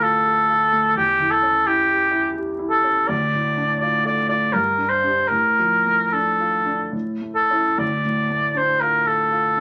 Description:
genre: classical, romantic duo for oboe and grand piano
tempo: 64-89 BPM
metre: 3/4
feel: rubato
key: D minor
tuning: A4 = 440 Hz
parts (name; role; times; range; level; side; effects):
- warm oboe; melody; 0.0-9.6 s; G4 to D5; -20 LUFS; equal; none
- warm baby grand piano; accompaniment; 0.0-9.6 s; D2 to A4; -28 LUFS; equal; none
room: moderate studio reverb, RT60 0.8 s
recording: vinyl crackle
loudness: -20 LUFS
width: mono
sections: 0.0-9.6 A section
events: none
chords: 0.0 Dm; 1.0 C#dim/E; 3.1 Dm; 4.5 Gm; 5.3 Dm/A; 6.9 A; 7.8 Dm

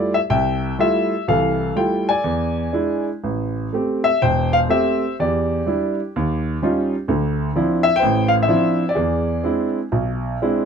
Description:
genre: solo jazz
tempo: 125 BPM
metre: 4/4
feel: swing 66% on 8ths, rubato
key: unclear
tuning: A4 = 439 Hz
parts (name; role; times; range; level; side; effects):
- warm grand piano; solo; 0.0-10.7 s; E1 to Ab5; -17 LUFS; equal; none
room: little or no reverb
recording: close, detailed microphones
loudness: -17 LUFS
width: side -6 dB against mid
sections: 0.0-3.2 A section; 3.2-10.7 B section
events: none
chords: 0.0 Fmaj9; 2.2 E7; 3.2 Am7; 5.2 Em7; 6.1 Eb9; 7.1 Dm9; 9.0 E7b13

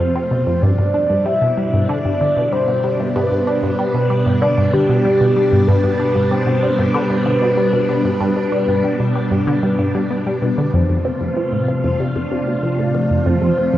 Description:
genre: ambient, sequencer-driven space music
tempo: 95 BPM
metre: 4/4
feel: straight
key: unclear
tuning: A4 = 439 Hz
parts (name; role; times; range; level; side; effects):
- soft octave-layered synth lead; melody; 0.0-13.8 s; G4 to E5; -19 LUFS; left 1 dB; chorus, phaser, analog delay
- phased string machine; sustained chords; 0.0-13.8 s; B2 to F4; -20 LUFS; equal; ensemble chorus, phaser
- resonant blip pluck; riff; 0.0-13.8 s; F2 to D4; -19 LUFS; equal; phaser, analog delay
room: wet huge ambient reverb, RT60 7.8 s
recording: worn, warbling old tape, cassette tape, warbly pitch drift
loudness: -14 LUFS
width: side -13 dB against mid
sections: 0.0-10.7 A section; 10.7-13.8 A section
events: fade-in on string machine 0.0-10.7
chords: 0.0 F; 0.6 G; 10.7 F

